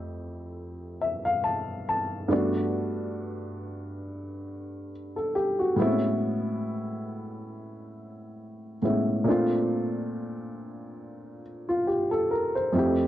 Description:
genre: hip hop.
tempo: 69 BPM.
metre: 4/4.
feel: swing 55% on 16ths.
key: unclear.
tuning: A4 = 440 Hz.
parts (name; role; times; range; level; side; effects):
dark upright piano; solo; 0.0-13.1 s; F2 to A5; -26 LUFS; equal; cassette tape, low-pass filter.
room: moderate studio reverb, RT60 0.6 s.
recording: lossy compression artefacts.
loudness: -25 LUFS.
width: side -13 dB against mid.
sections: 0.0-13.1 A section.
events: upright piano fill 0.6-2.3.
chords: 0.0 Fmaj9; 2.3 Gmaj9; 5.8 Amaj9; 9.3 Bbmaj9.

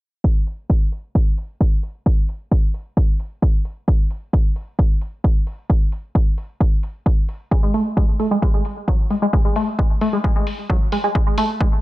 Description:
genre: driving peak-time techno.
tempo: 132 BPM.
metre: 4/4.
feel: straight.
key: unclear.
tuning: A4 = 437 Hz.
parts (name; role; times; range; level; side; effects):
electronic kick drum; drums; 0.2-11.7 s; none; -16 LUFS; equal; none.
electronic hi-hat; drums; 0.5-11.5 s; none; -36 LUFS; left 1 dB; sidechain pumping on hats.
tight sequenced synth; riff; 7.5-11.7 s; F#3 to A3; -21 LUFS; equal; chorus, tube saturation, sidechain pumping, digital delay.
room: light reverb.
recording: dense, heavily limited modern master, low-pass filter.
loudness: -17 LUFS.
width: side -18 dB against mid.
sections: 0.2-11.8 A section.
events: filter sweep 0.2-11.8.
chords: none.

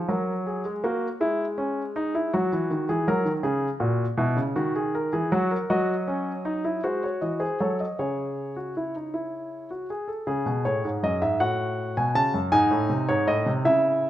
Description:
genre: classical, baroque-style 3-part fugue for grand piano.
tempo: 53 BPM (dotted quarters).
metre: 6/8.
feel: straight.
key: C# minor from 5.7 s.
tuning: A4 = 440 Hz.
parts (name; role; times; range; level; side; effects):
warm grand piano; solo; 0.0-14.1 s; F#2 to A5; -23 LUFS; equal; none.
room: moderate recital hall reverb, RT60 1.4 s.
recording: none.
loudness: -23 LUFS.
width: side -13 dB against mid.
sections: 0.0-10.3 A section; 10.3-14.1 B section.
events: none.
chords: 0.1 F#; 1.2 E/G#; 2.3 D#m; 3.4 C#m; 4.6 D#madd11; 5.7 D#m7/F#; 6.8 G#7; 8.0 C#m; 11.4 F#m/A; 12.5 G#.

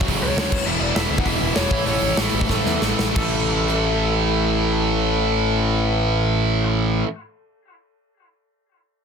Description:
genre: punk rock.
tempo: 173-205 BPM.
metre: 4/4.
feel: straight.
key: A major.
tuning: A4 = 440 Hz.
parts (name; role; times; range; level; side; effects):
biting overdriven guitar; riff; 0.0-7.1 s; E2 to A3; -26 LUFS; equal; none.
tight distorted guitar; riff; 0.0-7.1 s; E2 to A3; -22 LUFS; right 2 dB; distortion.
fuzz picked electric bass; bass; 0.0-7.0 s; E1 to E2; -25 LUFS; equal; overdrive.
big rock drum kit; drums; 0.0-3.8 s; crash cymbal, hi-hat, kick drum, rim click, snare drum; -24 LUFS; equal; none.
lead guitar through a small cranked amp; melody; 0.2-6.7 s; A4 to F#5; -28 LUFS; left 5 dB; overdrive, tape echo.
room: little or no reverb.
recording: dense, heavily limited modern master.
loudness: -18 LUFS.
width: side -6 dB against mid.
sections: 0.0-3.2 A section; 3.2-5.9 B section.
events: slowing down 0.7-3.2; drum fill 2.5-3.2.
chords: 0.0 F#5; 0.5 E5; 1.7 A5.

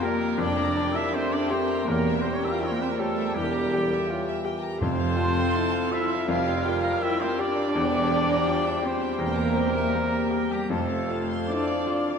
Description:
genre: classical, romantic movement for piano and orchestra.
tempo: 81 BPM.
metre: 4/4.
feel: rubato.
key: F major.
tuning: A4 = 440 Hz.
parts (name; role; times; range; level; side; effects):
clear grand piano; melody; 0.0-12.2 s; E2 to G4; -29 LUFS; left 3 dB; none.
warm studio violin section; melody; 0.0-12.2 s; F5 to G5; -42 LUFS; right 1 dB; none.
mellow hollow concert flute; second line; 0.0-12.2 s; G5 to F6; -36 LUFS; left 2 dB; none.
warm chamber violin section; second line; 0.0-12.2 s; C5 to C6; -38 LUFS; left 3 dB; none.
warm clarinet; second line; 0.0-12.2 s; G4 to C5; -36 LUFS; left 1 dB; none.
warm oboe; second line; 0.0-12.2 s; G4 to F5; -37 LUFS; right 3 dB; none.
clear bassoon; accompaniment; 0.0-12.2 s; E3 to Bb3; -36 LUFS; right 1 dB; none.
warm studio viola section; accompaniment; 0.0-12.2 s; G4 to Bb4; -37 LUFS; right 1 dB; none.
mellow French horn section; sustained chords; 0.0-12.2 s; G3 to F4; -31 LUFS; left 4 dB; none.
clear trumpet; stabs; 0.0-12.2 s; G4 to F5; -32 LUFS; right 2 dB; none.
dark studio cello section; bass; 0.0-12.2 s; G3 to F4; -31 LUFS; right 3 dB; none.
dark studio double bass section; bass; 0.4-11.4 s; E2 to F2; -35 LUFS; right 5 dB; none.
warm tuba; bass; 0.4-11.4 s; E1 to F1; -36 LUFS; right 4 dB; none.
timpani; percussion; 4.8-5.9 s; F2; -35 LUFS; equal; none.
room: wet scoring stage reverb, RT60 1.9 s.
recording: none.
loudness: -23 LUFS.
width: side -6 dB against mid.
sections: 0.0-12.2 A section.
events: none.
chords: 0.0 Gm7/F; 1.9 Edim7; 4.8 F; 6.3 Gm7/F; 7.8 C7/E; 10.7 F.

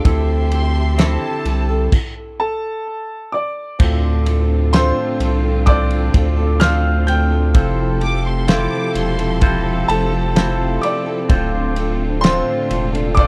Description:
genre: pop ballad.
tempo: 64 BPM.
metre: 4/4.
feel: straight.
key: D minor.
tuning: A4 = 440 Hz.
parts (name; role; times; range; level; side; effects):
clear concert grand piano; melody; 0.0-13.3 s; G4 to G6; -25 LUFS; equal; none.
barky tine electric piano; accompaniment; 0.0-13.3 s; A2 to D5; -26 LUFS; equal; phaser.
clear studio string section; sustained chords; 0.0-13.3 s; D3 to C6; -30 LUFS; equal; none.
fingerpicked steel-string acoustic guitar; arpeggios; 0.0-13.3 s; D3 to A4; -29 LUFS; equal; tape echo.
saturated sub bass; bass; 0.0-13.3 s; D1 to D2; -20 LUFS; equal; none.
loose indie drum kit; drums; 0.1-13.3 s; crash cymbal, kick drum, ride cymbal, snare drum; -20 LUFS; equal; none.
warm studio violin section; second line; 0.5-1.9, 8.0-9.7 s; A5 to D6; -31 LUFS; equal; none.
room: little or no reverb.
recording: none.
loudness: -17 LUFS.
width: mono.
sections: 0.0-3.8 A section; 3.8-13.3 A section.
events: stop 1.9-3.8.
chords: 0.0 Am7/D; 1.9 D5; 3.8 Dm7; 7.5 Fmaj7; 11.3 Dm7.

